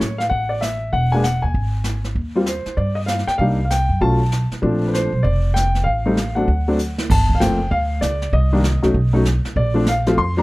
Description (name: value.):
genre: jazz piano trio.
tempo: 194 BPM.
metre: 4/4.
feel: swing 64% on 8ths.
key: G minor from 7.1 s.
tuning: A4 = 440 Hz.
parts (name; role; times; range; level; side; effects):
warm grand piano; melody; 0.0-10.4 s; Eb3 to C6; -20 LUFS; left 1 dB; none.
upright bass; bass; 0.0-10.4 s; E1 to A2; -20 LUFS; equal; none.
jazz brush drum kit; drums; 0.0-10.4 s; brushed snare drum, crash cymbal, hi-hat, kick drum, snare drum; -25 LUFS; right 1 dB; none.
room: light reverb.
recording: dark, warm production.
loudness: -16 LUFS.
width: side -20 dB against mid.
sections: 0.0-7.1 A section; 7.1-10.4 B section.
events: drum fill 6.8-7.1.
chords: 0.0 D (rootless); 0.9 E; 2.2 Eb6; 3.4 Cm7; 4.0 Bsus2; 4.6 Bbmaj9; 5.9 Am; 6.5 D; 7.1 G7sus2; 8.3 Cm; 8.9 B; 9.6 Bbmaj9.